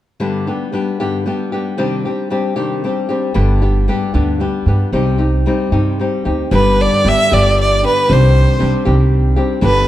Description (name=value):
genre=mexican folk, mariachi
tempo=76 BPM (dotted quarters)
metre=6/8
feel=straight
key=G major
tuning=A4 = 440 Hz
part: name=flamenco guitar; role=accompaniment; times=0.2-9.9 s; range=G2 to G4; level=-17 LUFS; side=left 2 dB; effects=none
part: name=upright bass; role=bass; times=3.4-9.9 s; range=G1 to G2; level=-14 LUFS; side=right 1 dB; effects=none
part: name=clear violin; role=melody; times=6.5-9.9 s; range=B4 to E5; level=-14 LUFS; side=right 1 dB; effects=none
room=moderate recital hall reverb, RT60 1.7 s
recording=dark, warm production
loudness=-13 LUFS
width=side -13 dB against mid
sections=0.2-6.5 A section; 6.5-9.9 B section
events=none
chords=0.2 G; 1.8 Cmadd9; 3.4 G; 4.9 Cm; 6.5 G; 8.1 Cmadd9